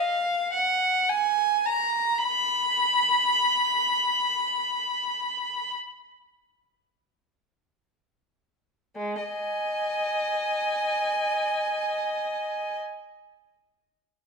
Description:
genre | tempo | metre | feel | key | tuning
classical, free, expressive piece for unaccompanied violin | free time | none | none | G# dorian | A4 = 439 Hz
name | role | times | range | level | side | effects
rich violin | solo | 0.0-12.8 s | G#3 to B5 | -23 LUFS | equal | none
room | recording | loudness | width
moderate recital hall reverb, RT60 1.5 s | minimal, uncompressed stereo recording | -23 LUFS | side -4 dB against mid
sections
0.0-9.0 A section; 9.0-14.3 B section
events
slowing down 0.0-9.0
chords
none

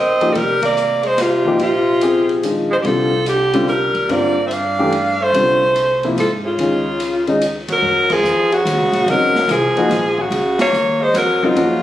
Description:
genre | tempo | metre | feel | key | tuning
modal jazz | 144 BPM | 3/4 | swing 66% on 8ths | Gb lydian from 7.8 s | A4 = 436 Hz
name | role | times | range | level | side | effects
breathy alto saxophone | melody | 0.0-11.8 s | F4 to F5 | -16 LUFS | equal | plate reverb
warm tenor saxophone | second line | 0.0-11.8 s | C3 to D4 | -21 LUFS | right 2 dB | none
upright bass | bass | 0.0-11.8 s | F1 to Ab2 | -27 LUFS | equal | none
warm grand piano | accompaniment | 0.2-11.8 s | C3 to Ab4 | -18 LUFS | left 2 dB | none
open jazz drum kit | drums | 0.2-11.7 s | crash cymbal, hi-hat, kick drum, ride cymbal, snare drum | -28 LUFS | left 1 dB | none
room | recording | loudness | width
moderate large studio reverb, RT60 0.9 s | recorded on a phone in the room, studio reverb, compression | -14 LUFS | side -13 dB against mid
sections
0.0-7.8 A section; 7.8-11.8 B section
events
band accent 0.6, 7.6, 8.0, 10.5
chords
0.0 Bb13sus4; 2.8 C13sus4; 6.6 Dbadd9; 7.8 Gbmaj9

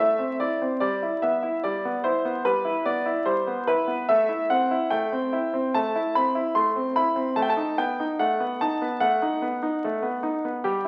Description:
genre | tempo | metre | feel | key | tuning
classical-period piano sonatina | 73 BPM | 4/4 | straight | unclear | A4 = 439 Hz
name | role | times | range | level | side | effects
bright grand piano | solo | 0.0-10.9 s | G3 to C6 | -25 LUFS | equal | none
room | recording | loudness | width
wet recital hall reverb, RT60 1.4 s | very old 78 rpm record, vinyl crackle | -25 LUFS | mono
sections
0.0-10.9 A section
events
none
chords
0.0 Am; 0.8 Em/G; 4.1 Am; 7.4 B7/A

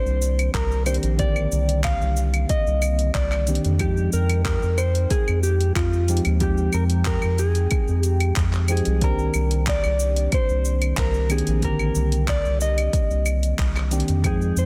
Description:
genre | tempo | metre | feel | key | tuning
sunset chillout | 92 BPM | 4/4 | straight | C minor | A4 = 437 Hz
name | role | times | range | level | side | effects
mellow electric guitar | melody | 0.0-14.7 s | F4 to F5 | -29 LUFS | equal | harmonic tremolo, digital delay
mellow FM electric piano | accompaniment | 0.0-14.7 s | D3 to G5 | -30 LUFS | equal | chorus, phaser, digital delay
round analog bass | bass | 0.1-14.7 s | Bb1 to F2 | -24 LUFS | equal | none
deep house drum kit | drums | 0.1-14.7 s | cabasa, claves, handclaps, hi-hat | -33 LUFS | equal | overdrive
electronic kick drum | drums | 0.5-14.4 s | none | -27 LUFS | equal | none
room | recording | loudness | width
light reverb | dense, heavily limited modern master | -21 LUFS | mono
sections
0.0-14.7 A section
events
none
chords
0.0 Cm9; 3.8 Fm9; 9.0 Cm9

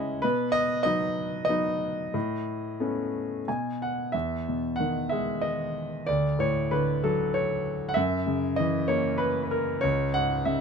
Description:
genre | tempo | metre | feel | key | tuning
classical, lyrical solo piano | 94 BPM | 3/4 | rubato | A lydian | A4 = 437 Hz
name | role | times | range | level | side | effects
warm grand piano | solo | 0.0-10.6 s | C#2 to G#5 | -25 LUFS | equal | none
room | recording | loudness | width
light reverb | close, detailed microphones | -25 LUFS | side -6 dB against mid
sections
0.0-4.1 A section; 4.1-10.6 B section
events
grand piano fill 0.0, 3.1-4.1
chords
0.2 B; 2.2 Aadd9; 3.5 N.C.; 4.1 Emaj7; 6.1 D; 8.0 F#7; 9.8 C#m

